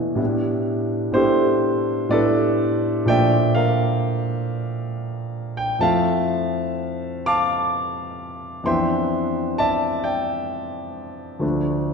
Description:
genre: classical, impressionist solo piano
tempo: 58-68 BPM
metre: 3/4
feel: rubato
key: A minor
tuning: A4 = 441 Hz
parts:
  - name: warm concert grand piano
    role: solo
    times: 0.0-11.9 s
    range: D2 to D6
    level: -19 LUFS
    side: equal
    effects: none
room: wet scoring stage reverb, RT60 1.8 s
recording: recorded in a church or concert hall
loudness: -19 LUFS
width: side -5 dB against mid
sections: 0.2-11.9 A section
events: none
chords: 0.2 Am11; 3.1 Bbmaj7#11; 5.8 Fmaj7; 8.7 Cmaj9/F; 11.4 Dm

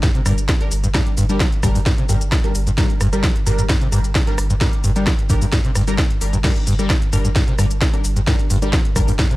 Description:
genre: driving peak-time techno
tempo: 131 BPM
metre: 4/4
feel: straight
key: G minor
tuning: A4 = 440 Hz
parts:
  - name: screaming distorted acid line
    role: riff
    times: 0.0-9.4 s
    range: G2 to G3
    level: -21 LUFS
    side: equal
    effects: distortion, lush chorus, sidechain pumping
  - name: warm sub bass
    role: bass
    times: 0.0-9.2 s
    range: G1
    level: -21 LUFS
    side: equal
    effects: sidechain pumping, low-pass filter
  - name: electronic kick drum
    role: drums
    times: 0.0-9.3 s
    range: none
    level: -19 LUFS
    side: equal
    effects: studio reverb
  - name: techno drum kit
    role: drums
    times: 0.0-9.4 s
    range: crash cymbal, hi-hat, rim click, shaker, snare drum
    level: -24 LUFS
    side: equal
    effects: sidechain pumping on hats, studio reverb, sidechain pumping on perc, sidechain pumping on cymbals
  - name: rave stab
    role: stabs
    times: 0.3-9.1 s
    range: G3 to Bb4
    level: -27 LUFS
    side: left 2 dB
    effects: chorus, built-in reverb, sidechain pumping, analog delay
room: little or no reverb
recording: dry, gritty hardware recording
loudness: -15 LUFS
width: side -18 dB against mid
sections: 0.0-9.4 A section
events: none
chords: 0.0 Gm

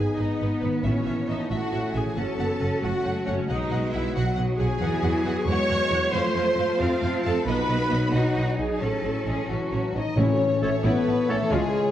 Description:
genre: cinematic, heroic adventure film score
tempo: 90 BPM (dotted quarters)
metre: 6/8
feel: straight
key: A lydian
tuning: A4 = 440 Hz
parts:
  - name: warm studio violin section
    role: melody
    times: 0.0-11.9 s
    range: F#4 to F#5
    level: -37 LUFS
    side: left 3 dB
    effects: none
  - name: warm symphonic violin section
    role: second line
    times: 0.0-11.9 s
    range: B4 to C#6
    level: -35 LUFS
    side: left 1 dB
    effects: none
  - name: rich symphonic viola section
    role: accompaniment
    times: 0.0-11.9 s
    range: B3 to C#5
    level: -28 LUFS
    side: right 2 dB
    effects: none
  - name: dark French horn section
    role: sustained chords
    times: 0.0-11.9 s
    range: E3 to F#4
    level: -28 LUFS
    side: left 3 dB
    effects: none
  - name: concert harp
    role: arpeggios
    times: 0.0-11.9 s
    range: F#2 to D#6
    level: -33 LUFS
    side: left 5 dB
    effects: none
  - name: rich symphonic double bass section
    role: bass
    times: 0.0-11.6 s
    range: F#1 to F2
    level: -28 LUFS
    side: right 2 dB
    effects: none
  - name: clear studio cello section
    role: bass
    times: 0.2-11.6 s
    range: A2 to D#4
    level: -31 LUFS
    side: right 2 dB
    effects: none
  - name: timpani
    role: percussion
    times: 0.8-1.5, 10.2-10.8 s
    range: A2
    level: -30 LUFS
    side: equal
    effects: none
  - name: mellow clarinet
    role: second line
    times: 10.6-11.4 s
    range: A4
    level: -36 LUFS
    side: equal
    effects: none
  - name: mellow hollow flute section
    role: second line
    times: 10.6-11.4 s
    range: E5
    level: -38 LUFS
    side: right 3 dB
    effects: none
  - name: warm oboe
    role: second line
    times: 10.6-11.4 s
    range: C#5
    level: -38 LUFS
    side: right 1 dB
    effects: none
  - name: dark trombone section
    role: sustained chords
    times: 10.6-11.4 s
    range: E3 to C#4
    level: -39 LUFS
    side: right 2 dB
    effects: none
room: wet scoring stage reverb, RT60 1.9 s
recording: worn, warbling old tape, cassette tape, warbly pitch drift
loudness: -22 LUFS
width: side -11 dB against mid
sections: 0.0-10.2 A section; 10.2-11.9 B section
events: none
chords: 0.0 G#m; 0.8 A; 2.2 F#m; 3.5 B; 4.8 Eadd9; 6.1 F; 7.5 B; 8.8 A

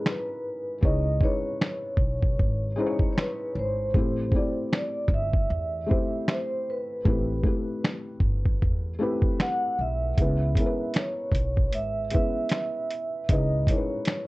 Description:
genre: lo-fi hip hop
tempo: 77 BPM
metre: 4/4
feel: swing 56% on 16ths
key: C# minor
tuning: A4 = 439 Hz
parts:
  - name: vibraphone with soft mallets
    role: melody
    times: 0.0-14.3 s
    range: B4 to F#5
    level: -30 LUFS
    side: right 1 dB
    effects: low-pass filter
  - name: felt-muted upright piano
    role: accompaniment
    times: 0.0-14.3 s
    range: G#3 to D5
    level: -31 LUFS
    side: left 2 dB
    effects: cassette tape, low-pass filter
  - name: lo-fi sampler-style drum kit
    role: drums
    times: 0.1-14.3 s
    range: finger snaps, hi-hat, kick drum, snare drum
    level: -25 LUFS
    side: equal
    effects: none
  - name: upright bass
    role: bass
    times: 0.8-13.6 s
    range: G1 to E2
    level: -28 LUFS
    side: equal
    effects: none
room: light reverb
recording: worn, warbling old tape, cassette tape, warbly pitch drift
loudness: -24 LUFS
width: side -20 dB against mid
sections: 0.0-14.3 A section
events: break 0.0-10.2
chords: 0.0 C#m9; 3.9 Am9; 10.2 C#m9

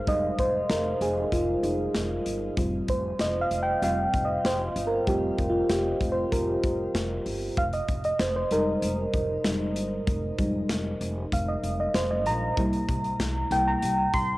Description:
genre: 1980s-style pop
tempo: 96 BPM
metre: 4/4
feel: straight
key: F minor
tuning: A4 = 435 Hz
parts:
  - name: mellow FM electric piano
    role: accompaniment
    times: 0.0-14.4 s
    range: G3 to C6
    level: -26 LUFS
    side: equal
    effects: chorus, cassette tape, shimmer reverb
  - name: upright bass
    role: bass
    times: 0.1-14.4 s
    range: F1 to C2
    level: -32 LUFS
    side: equal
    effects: none
  - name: modern studio drum kit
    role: drums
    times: 0.1-14.3 s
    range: hi-hat, kick drum, snare drum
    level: -31 LUFS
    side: equal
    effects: none
room: wet spring reverb, RT60 2.2 s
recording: home recording on cassette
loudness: -24 LUFS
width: side -18 dB against mid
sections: 0.0-14.4 A section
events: FM electric piano solo 0.0-14.4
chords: 0.0 Fm7; 2.6 Csus4/F; 7.6 Fm7; 12.6 C7

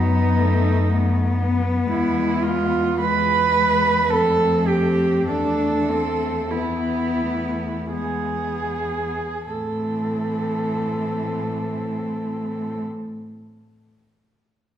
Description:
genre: classical, lyrical piece for cello ensemble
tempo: 37-60 BPM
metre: 3/4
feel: rubato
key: A minor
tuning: A4 = 440 Hz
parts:
  - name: muted cello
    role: melody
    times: 0.0-12.8 s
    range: G#3 to C4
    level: -29 LUFS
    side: left 7 dB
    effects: none
  - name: muted cello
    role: second line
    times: 0.0-12.8 s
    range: D#4 to B4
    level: -22 LUFS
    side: right 4 dB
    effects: none
  - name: muted cello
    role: accompaniment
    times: 0.0-12.8 s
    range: E3 to D4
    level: -27 LUFS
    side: left 3 dB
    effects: none
  - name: muted cello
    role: bass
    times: 0.0-12.8 s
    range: E2 to A2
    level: -25 LUFS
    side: equal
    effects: none
room: wet recital hall reverb, RT60 1.5 s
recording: heard from further back in the room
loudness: -19 LUFS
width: side -10 dB against mid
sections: 0.0-9.5 A section; 9.5-14.0 B section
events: slowing down 0.4-9.5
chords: 0.0 B7/F#; 1.9 E; 4.1 F; 5.3 E7sus4; 7.9 E; 9.5 Am

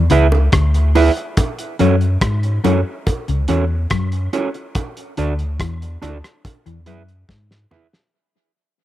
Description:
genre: roots reggae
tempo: 71 BPM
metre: 4/4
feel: straight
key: F# minor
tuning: A4 = 441 Hz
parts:
  - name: warm sub bass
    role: bass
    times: 0.0-7.7 s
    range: C#2 to G#2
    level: -17 LUFS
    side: equal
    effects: none
  - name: mellow electric guitar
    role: accompaniment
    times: 0.1-7.9 s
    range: C#4 to E5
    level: -20 LUFS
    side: right 4 dB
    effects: dub echo
  - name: mellow electric guitar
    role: riff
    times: 0.1-7.5 s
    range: C#3 to G#3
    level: -22 LUFS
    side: left 6 dB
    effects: none
  - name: cloth-damped thuddy drum kit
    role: drums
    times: 0.1-8.1 s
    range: hi-hat, kick drum, rim click, snare drum, toms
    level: -20 LUFS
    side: equal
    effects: tape echo
  - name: bongos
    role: percussion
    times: 0.3-7.9 s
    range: none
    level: -27 LUFS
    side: right 5 dB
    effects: none
room: light reverb, studio reverb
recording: none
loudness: -15 LUFS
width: side -14 dB against mid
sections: 0.0-1.4 A section; 1.4-8.1 B section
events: fade-out 1.4-8.1; drum fill 7.3-8.1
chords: 0.0 E; 1.4 F#m; 4.8 D; 6.4 E

